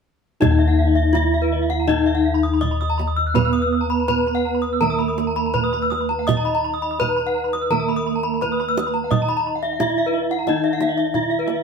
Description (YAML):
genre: Balinese gamelan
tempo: 83 BPM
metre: 4/4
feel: uneven beats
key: Eb pelog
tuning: A4 = 441 Hz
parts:
  - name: gamelan-type bronze metallophone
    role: melody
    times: 0.4-11.6 s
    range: Eb4 to Eb5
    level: -22 LUFS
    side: left 2 dB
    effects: none
  - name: gamelan-type bronze metallophone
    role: accompaniment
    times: 0.4-11.6 s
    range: Eb3 to Eb4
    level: -27 LUFS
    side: right 8 dB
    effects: none
  - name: gamelan-type bronze metallophone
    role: arpeggios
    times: 0.4-11.5 s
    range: Cb5-20c to Fb6+20c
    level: -25 LUFS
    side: left 2 dB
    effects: none
  - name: gamelan-type bossed gongs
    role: bass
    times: 0.4-11.6 s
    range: Eb2 to Eb5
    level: -25 LUFS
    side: left 1 dB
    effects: none
  - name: kendang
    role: percussion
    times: 0.4-11.6 s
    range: none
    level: -25 LUFS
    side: right 4 dB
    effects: none
  - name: gamelan-type bronze metallophone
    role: arpeggios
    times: 0.5-11.6 s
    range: Eb5 to Gb6-30c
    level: -28 LUFS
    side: right 3 dB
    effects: none
room: moderate studio reverb, RT60 0.7 s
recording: band playing live in one room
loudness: -18 LUFS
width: side -6 dB against mid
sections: 0.4-11.6 A section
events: none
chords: none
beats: | 0.42 1.15 1.88 2.62 | 3.35 4.08 4.81 5.54 | 6.27 7.00 7.71 8.42 | 9.12 9.80 10.48 11.14